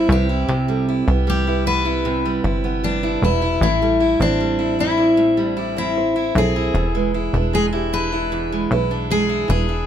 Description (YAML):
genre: acoustic pop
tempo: 77 BPM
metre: 4/4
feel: straight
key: A minor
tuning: A4 = 441 Hz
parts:
  - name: picked steel-string acoustic guitar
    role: melody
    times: 0.0-9.9 s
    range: D4 to B4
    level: -21 LUFS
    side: left 4 dB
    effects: plate reverb
  - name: fingerpicked steel-string acoustic guitar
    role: accompaniment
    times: 0.0-9.9 s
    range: E2 to E4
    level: -21 LUFS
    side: right 3 dB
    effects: none
  - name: plucky analog bass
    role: bass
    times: 0.0-9.9 s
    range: E1 to C2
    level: -22 LUFS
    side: equal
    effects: none
  - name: nylon-string guitar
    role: arpeggios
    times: 0.1-9.7 s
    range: C4 to D5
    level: -29 LUFS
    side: right 12 dB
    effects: none
room: light reverb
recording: none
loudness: -17 LUFS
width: side -9 dB against mid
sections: 0.0-9.9 A section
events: none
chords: 0.1 Cmaj7; 3.6 Am7; 6.8 E7